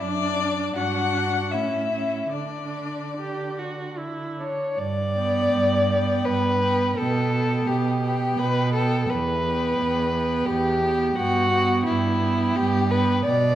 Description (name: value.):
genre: classical, slow romantic movement for string quartet.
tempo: 72-88 BPM.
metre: 3/4.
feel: rubato.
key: D major, G major from 4.8 s.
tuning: A4 = 440 Hz.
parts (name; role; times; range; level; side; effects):
muted violin; melody; 0.0-13.3 s; D5 to G5; -30 LUFS; left 6 dB; none.
muted violin; second line; 0.0-13.6 s; D4 to D5; -24 LUFS; left 1 dB; none.
muted viola; accompaniment; 0.0-13.3 s; B3 to G4; -27 LUFS; right 3 dB; none.
muted cello; bass; 0.0-13.6 s; E2 to D3; -27 LUFS; right 3 dB; none.
room: wet recital hall reverb, RT60 1.7 s.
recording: none.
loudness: -21 LUFS.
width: side -12 dB against mid.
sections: 0.0-4.8 A section; 4.8-13.6 B section.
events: none.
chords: 0.0 D/F#; 0.8 Dadd11/G; 1.5 A; 2.3 D; 4.8 G; 7.0 G/B; 9.1 Em; 11.2 Em/G.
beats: | 0.02 0.77 1.54 | 2.35 3.18 3.99 | 4.79 5.53 6.25 | 6.97 7.68 8.39 | 9.10 9.79 10.48 | 11.17 11.87 12.57 | 13.27.